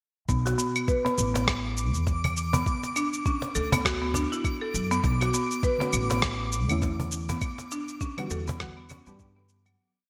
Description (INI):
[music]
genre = organic downtempo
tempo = 101 BPM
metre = 4/4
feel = swing 57% on 16ths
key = B minor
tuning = A4 = 440 Hz
[part]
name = buzzing marimba with medium hard mallets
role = arpeggios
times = 0.3-9.8 s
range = F#3 to B4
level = -32 LUFS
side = equal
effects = low-pass filter, delay
[part]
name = upright bass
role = bass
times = 0.3-9.7 s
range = A1 to G2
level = -32 LUFS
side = equal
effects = none
[part]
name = electronic cabasa, claves and rim click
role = drums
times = 0.3-9.8 s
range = none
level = -34 LUFS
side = equal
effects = none
[part]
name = electronic kick drum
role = drums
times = 0.3-9.3 s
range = none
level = -31 LUFS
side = equal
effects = none
[part]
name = twinkling granular texture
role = texture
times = 1.2-9.8 s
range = D6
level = -39 LUFS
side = equal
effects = built-in reverb, subtle chorus
[part]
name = cajon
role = percussion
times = 0.5-9.0 s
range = none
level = -34 LUFS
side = equal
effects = none
[part]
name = deep mellow chord stab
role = accompaniment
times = 5.8-9.8 s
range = D3 to G4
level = -37 LUFS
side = equal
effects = chorus, sidechain pumping, delay
[sound]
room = moderate lush hall reverb, RT60 1.5 s, small room ambience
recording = bright 1980s-style digital production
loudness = -27 LUFS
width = mono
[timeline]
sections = 0.3-9.8 groove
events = filter sweep on marimba 0.3-9.8; fade-out 6.6-9.8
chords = 0.3 Bm7; 2.7 D6; 5.0 Bm7; 7.4 Em7